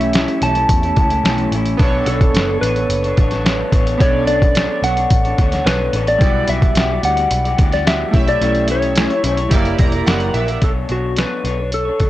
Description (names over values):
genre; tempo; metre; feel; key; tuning
indie pop, bedroom pop; 109 BPM; 4/4; straight; B minor; A4 = 440 Hz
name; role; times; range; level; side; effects
electric slide guitar; melody; 0.0-12.1 s; F#4 to A5; -20 LUFS; left 1 dB; analog chorus, tape echo
chorused retro synth keys; accompaniment; 0.0-10.6 s; G3 to A#5; -23 LUFS; right 3 dB; cassette tape
electric guitar through a small old amp; accompaniment; 0.0-12.1 s; A2 to D5; -22 LUFS; left 1 dB; lush chorus, warbly pitch drift
vintage muted picked electric bass; bass; 0.0-12.1 s; E1 to E2; -21 LUFS; equal; none
lo-fi sampler-style drum kit; drums; 0.0-12.1 s; hi-hat, kick drum, snare drum; -17 LUFS; equal; none
room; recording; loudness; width
little or no reverb; dry, gritty hardware recording, cassette tape; -13 LUFS; side -15 dB against mid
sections
0.0-10.6 A section; 10.6-12.1 B section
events
synth keys fill 9.5-10.6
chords
0.0 A7/B; 1.8 Bm9; 6.2 Em9/B; 8.1 A7/B; 9.5 F#7b9b13; 10.6 Bm9